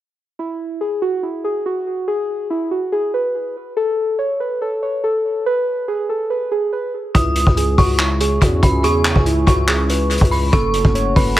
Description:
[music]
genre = hip hop, trap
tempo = 142 BPM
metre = 4/4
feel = half-time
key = C# minor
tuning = A4 = 440 Hz
[part]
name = muted felt-like synth keys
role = melody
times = 0.4-11.4 s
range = E4 to C#5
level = -20 LUFS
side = right 1 dB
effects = chorus, tape echo
[part]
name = dark detuned synth bell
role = second line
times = 7.1-11.4 s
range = B5 to D#6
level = -22 LUFS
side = equal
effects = chorus, tape echo
[part]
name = dark analog pad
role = sustained chords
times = 7.6-11.4 s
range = C#3 to G#4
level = -26 LUFS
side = right 2 dB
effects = chorus
[part]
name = growling 808-style bass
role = bass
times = 7.1-11.4 s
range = F#1 to E2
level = -19 LUFS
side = equal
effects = none
[part]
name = crunchy breakbeat drum kit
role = drums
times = 7.1-11.4 s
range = handclaps, hi-hat, kick drum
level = -16 LUFS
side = equal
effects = none
[sound]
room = light reverb, small room ambience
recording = echo-heavy mix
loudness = -16 LUFS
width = side -14 dB against mid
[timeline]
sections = 0.4-7.1 A section; 7.1-11.4 B section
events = none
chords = 0.4 N.C.; 7.1 C#m; 10.5 F#m

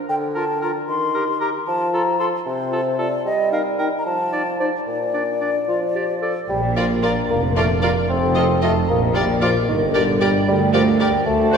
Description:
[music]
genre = cinematic, playful, whimsical film cue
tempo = 75 BPM (dotted quarters)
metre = 6/8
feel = straight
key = Bb major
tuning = A4 = 440 Hz
[part]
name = mellow hollow silver concert flute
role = second line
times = 0.1-11.6 s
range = C5 to C6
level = -24 LUFS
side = left 2 dB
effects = none
[part]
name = dark bassoon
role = accompaniment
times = 0.1-11.6 s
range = Bb2 to C4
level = -23 LUFS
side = equal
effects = none
[part]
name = warm oboe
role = second line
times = 0.3-11.6 s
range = A4 to Eb5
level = -28 LUFS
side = right 1 dB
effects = none
[part]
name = warm clarinet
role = second line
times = 0.4-11.6 s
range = D4 to Bb4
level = -30 LUFS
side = left 2 dB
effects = none
[part]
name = dark French horn section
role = sustained chords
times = 6.5-11.6 s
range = D4 to C5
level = -26 LUFS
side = left 6 dB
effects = none
[part]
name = rich chamber double bass section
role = bass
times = 6.5-11.6 s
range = F1 to D2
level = -25 LUFS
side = right 3 dB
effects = none
[part]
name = rich studio cello section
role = bass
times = 6.5-11.6 s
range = D2 to Bb2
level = -23 LUFS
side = right 3 dB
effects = none
[part]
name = warm tuba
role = bass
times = 6.5-11.6 s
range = F1 to D2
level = -24 LUFS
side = right 2 dB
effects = none
[part]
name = clear chamber violin section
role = melody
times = 6.8-11.6 s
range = D5 to Eb5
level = -28 LUFS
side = left 3 dB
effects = none
[part]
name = rich chamber violin section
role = second line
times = 6.8-11.6 s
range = A4 to C5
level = -32 LUFS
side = left 3 dB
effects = none
[part]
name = rich chamber viola section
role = accompaniment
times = 6.8-11.6 s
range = F4 to G4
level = -29 LUFS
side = right 1 dB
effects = none
[sound]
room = wet church reverb, RT60 2.8 s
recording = recorded in a church or concert hall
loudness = -17 LUFS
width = side -6 dB against mid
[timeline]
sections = 0.0-6.5 A section; 6.5-11.6 B section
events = none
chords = 0.1 Bb/D; 0.9 Eb; 1.7 F; 3.3 Eb/G; 4.1 F6; 4.9 Bb; 8.1 F7; 8.9 Bb; 9.7 Gm

